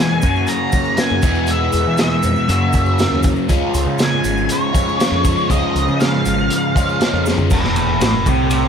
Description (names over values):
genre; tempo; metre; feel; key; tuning
psychedelic rock; 120 BPM; 4/4; straight; unclear; A4 = 440 Hz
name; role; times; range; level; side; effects
octave-fuzz lead guitar; melody; 0.0-8.7 s; E4 to A#5; -21 LUFS; equal; distortion, slapback echo
crunchy overdriven guitar; riff; 0.0-8.7 s; E2 to G#4; -18 LUFS; equal; phaser
growling picked electric bass; bass; 0.0-8.7 s; E1 to E3; -20 LUFS; equal; overdrive
crunchy breakbeat drum kit; drums; 0.2-8.6 s; crash cymbal, hi-hat, kick drum, ride cymbal, snare drum, toms; -19 LUFS; equal; none
tube shaker; percussion; 0.2-8.6 s; none; -35 LUFS; right 6 dB; none
room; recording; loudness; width
small room ambience; none; -14 LUFS; side -7 dB against mid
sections
0.0-7.5 A section; 7.5-8.7 B section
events
drum fill 7.3; lead electric guitar solo 7.5-8.7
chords
0.2 F#; 1.2 E; 2.5 F#; 3.5 C#; 7.5 F#7(no3)